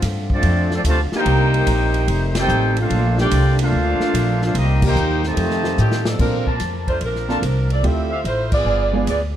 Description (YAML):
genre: jazz, big band swing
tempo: 146 BPM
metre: 4/4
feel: swing 67% on 8ths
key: Bb major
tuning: A4 = 440 Hz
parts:
  - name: clear trombone section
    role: sustained chords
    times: 0.0-6.2 s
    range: Bb2 to F4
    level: -30 LUFS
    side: left 1 dB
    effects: none
  - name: upright bass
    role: bass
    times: 0.0-9.4 s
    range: F1 to Bb2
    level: -19 LUFS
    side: equal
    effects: none
  - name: swinging big-band drum kit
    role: drums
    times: 0.0-9.2 s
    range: crash cymbal, hi-hat, kick drum, ride cymbal, snare drum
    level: -26 LUFS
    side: equal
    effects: none
  - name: clear trumpet section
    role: melody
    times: 0.3-6.0 s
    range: C4 to A5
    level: -23 LUFS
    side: equal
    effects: none
  - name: clear trombone section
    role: second line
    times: 0.3-6.0 s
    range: C3 to G4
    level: -23 LUFS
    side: right 1 dB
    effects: none
  - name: warm saxophone section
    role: melody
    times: 5.8-9.2 s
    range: Eb3 to E5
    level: -22 LUFS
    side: right 2 dB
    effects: none
  - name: clear baby grand piano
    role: accompaniment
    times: 6.2-9.1 s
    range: Ab3 to A4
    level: -25 LUFS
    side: right 4 dB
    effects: none
  - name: mellow trumpet section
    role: stabs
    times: 6.5-8.8 s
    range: G4 to A5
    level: -30 LUFS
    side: left 3 dB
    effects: none
room: light reverb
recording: dark, warm production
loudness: -16 LUFS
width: side -11 dB against mid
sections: 0.0-6.2 A section; 6.2-9.4 B section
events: band accent 2.3, 4.7, 8.4; drum fill 5.8-6.2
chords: 0.0 Dm7; 1.3 Cm7; 2.1 F13; 2.9 Bbmaj9; 4.5 Cm7; 5.4 F9; 6.2 Bbmaj9; 7.8 Dm11; 8.7 G7b9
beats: 0.03 0.44 0.85 | 1.26 1.67 2.08 2.49 | 2.90 3.31 3.72 4.13 | 4.54 4.95 5.37 5.78 | 6.19 6.60 7.01 7.42 | 7.83 8.24 8.65 9.07